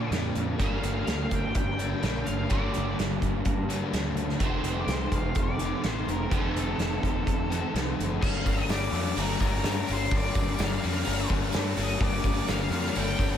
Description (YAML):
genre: rock, shoegaze and dream pop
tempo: 126 BPM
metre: 4/4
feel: straight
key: G minor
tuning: A4 = 439 Hz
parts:
  - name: octave-fuzz lead guitar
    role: melody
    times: 0.0-13.4 s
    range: A4 to G5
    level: -35 LUFS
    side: left 2 dB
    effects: distortion, tape echo
  - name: soft string machine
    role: sustained chords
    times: 0.0-13.4 s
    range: Bb3 to F5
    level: -38 LUFS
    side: equal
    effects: none
  - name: crunchy overdriven guitar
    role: riff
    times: 0.0-8.2 s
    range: F2 to D4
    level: -33 LUFS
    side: right 7 dB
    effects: reverse reverb
  - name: overdriven electric guitar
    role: riff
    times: 0.0-13.4 s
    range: F2 to D4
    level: -31 LUFS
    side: left 7 dB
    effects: wide subtle chorus
  - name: fuzz picked electric bass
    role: bass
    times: 0.1-13.4 s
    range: F1 to G2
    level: -31 LUFS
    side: equal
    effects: overdrive
  - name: loose indie drum kit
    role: drums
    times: 0.1-13.3 s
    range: crash cymbal, hi-hat, kick drum, snare drum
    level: -30 LUFS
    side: right 1 dB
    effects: none
  - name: tambourine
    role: percussion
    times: 8.2-13.3 s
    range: none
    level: -46 LUFS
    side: right 13 dB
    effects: none
room: moderate lush hall reverb, RT60 2.2 s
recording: dreamy mix soaked in reverb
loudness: -25 LUFS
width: side -9 dB against mid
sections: 0.0-8.2 A section; 8.2-13.4 B section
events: none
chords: 0.0 Bb6; 0.6 Gm7; 4.4 F7; 8.2 Gm7